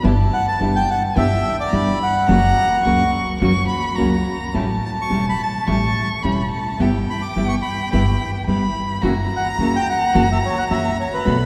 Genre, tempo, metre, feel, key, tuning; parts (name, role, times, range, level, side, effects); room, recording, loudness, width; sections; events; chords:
tango; 107 BPM; 4/4; rubato; A4 = 440 Hz
warm violin; second line; 0.0-11.5 s; G5 to C#6; -28 LUFS; equal
nylon-string guitar; accompaniment; 0.0-11.4 s; B2 to F#4; -24 LUFS; equal
rich chamber string section; stabs; 0.0-11.5 s; A3 to A4; -33 LUFS; equal
upright bass; bass; 0.0-11.5 s; E1 to C#2; -25 LUFS; equal
bandoneon; melody; 0.3-11.5 s; B4 to D6; -24 LUFS; equal
wet cathedral reverb, RT60 4.8 s; recorded in a church or concert hall; -19 LUFS; mono
0.0-11.5 A section
0.0 Em7/G; 2.3 F#; 4.5 A7; 6.8 Em/G; 9.0 F#7